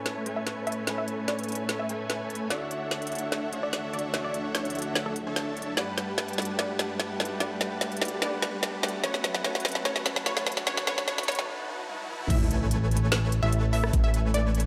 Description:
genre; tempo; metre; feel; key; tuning
future bass; 147 BPM; 4/4; half-time; A major; A4 = 440 Hz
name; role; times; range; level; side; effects
clear grand piano; accompaniment; 0.0-12.3 s; A3 to G#5; -39 LUFS; equal; sidechain pumping, tape echo
warm symphonic string section; sustained chords; 0.0-11.5 s; D2 to E5; -43 LUFS; equal; sidechain pumping
dense compressed supersaw; riff; 0.0-14.7 s; F#3 to A5; -37 LUFS; equal; sidechain pumping, low-pass filter
riser and impact; sound effects; 3.6-13.9 s; none; -42 LUFS; equal; none
trap drum kit; drums; 0.1-14.7 s; crash cymbal, hi-hat, rim click, snare drum, toms; -32 LUFS; equal; none
unison pluck; melody; 0.4-14.5 s; A4 to E5; -37 LUFS; equal; sidechain pumping, tape echo
fat analog bass; bass; 12.3-14.7 s; A1; -28 LUFS; equal; sidechain pumping
electronic kick drum; drums; 12.3-14.0 s; none; -26 LUFS; equal; none
room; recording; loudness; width
moderate lush hall reverb, RT60 1.9 s; high-pass filter; -29 LUFS; mono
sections
0.0-12.3 A section; 12.3-14.7 B section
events
build-up 0.0-12.3; drum fill 0.0-11.5, 11.9-12.3; filter sweep on supersaw synth 0.0-12.3; filter sweep on synth pluck 0.0-12.3; filter sweep 0.0-12.3; break 11.5-12.3; drop 12.3-14.7; impact 12.3-13.9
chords
0.0 Amaj9; 2.5 Dmaj9; 5.8 Gmaj7; 9.0 F#m7; 12.3 Amaj9

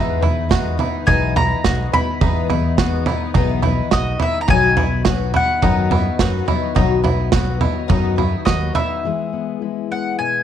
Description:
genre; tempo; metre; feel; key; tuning
indie folk with a building arrangement; 105 BPM; 4/4; straight; unclear; A4 = 440 Hz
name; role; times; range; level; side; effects
mandolin; melody; 0.0-10.4 s; D#5 to B5; -21 LUFS; left 2 dB; none
picked twelve-string acoustic guitar; accompaniment; 0.0-9.0 s; B2 to B4; -23 LUFS; left 11 dB; ensemble chorus
bluegrass banjo; arpeggios; 0.0-9.0 s; D#4 to F#4; -25 LUFS; right 11 dB; none
fingered electric bass; bass; 0.0-8.7 s; B1 to F#2; -21 LUFS; equal; none
loose indie drum kit; drums; 0.2-8.9 s; kick drum, snare drum, toms; -19 LUFS; right 2 dB; none
fingerpicked steel-string acoustic guitar; accompaniment; 9.0-10.4 s; B2 to G#4; -23 LUFS; left 11 dB; none
room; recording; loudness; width
light reverb; 1960s-style stereo with parts hard left and right; -15 LUFS; side -10 dB against mid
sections
0.0-9.0 A section; 9.0-10.4 B section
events
none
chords
0.0 Emaj7; 4.5 B; 9.0 E

